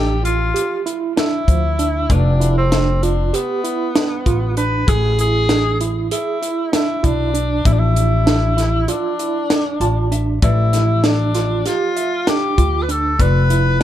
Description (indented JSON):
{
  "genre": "progressive instrumental, band music in an uneven meter",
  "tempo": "195 BPM (eighths)",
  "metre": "9/8",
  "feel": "straight",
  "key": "unclear",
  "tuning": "A4 = 443 Hz",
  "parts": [
    { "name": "warm tenor saxophone", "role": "melody", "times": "0.0-13.8 s", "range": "B3 to B4", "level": "-21 LUFS", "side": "left 2 dB", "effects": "ping-pong delay" },
    { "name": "hollow-body jazz guitar", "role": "accompaniment", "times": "0.0-13.8 s", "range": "F3 to A5", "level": "-29 LUFS", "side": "left 2 dB", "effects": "none" },
    { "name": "mellow tine electric piano", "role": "arpeggios", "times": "0.0-13.8 s", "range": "F3 to E5", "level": "-22 LUFS", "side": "right 7 dB", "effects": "medium tremolo" },
    { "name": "upright bass", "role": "bass", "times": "0.0-13.8 s", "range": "F1 to D2", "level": "-17 LUFS", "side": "equal", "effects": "none" },
    { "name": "crisp fusion drum kit", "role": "drums", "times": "0.3-13.8 s", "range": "hi-hat, kick drum, snare drum", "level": "-19 LUFS", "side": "equal", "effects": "none" }
  ],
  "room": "studio ambience",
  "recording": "dark, warm production",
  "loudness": "-15 LUFS",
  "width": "side -11 dB against mid",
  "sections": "0.0-13.8 A section",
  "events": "hollow-body jazz guitar fill 9.5-10.4",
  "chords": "0.0 G7/A (rootless); 4.9 E/A; 7.7 Dmadd9/A; 10.4 G7/A (rootless)"
}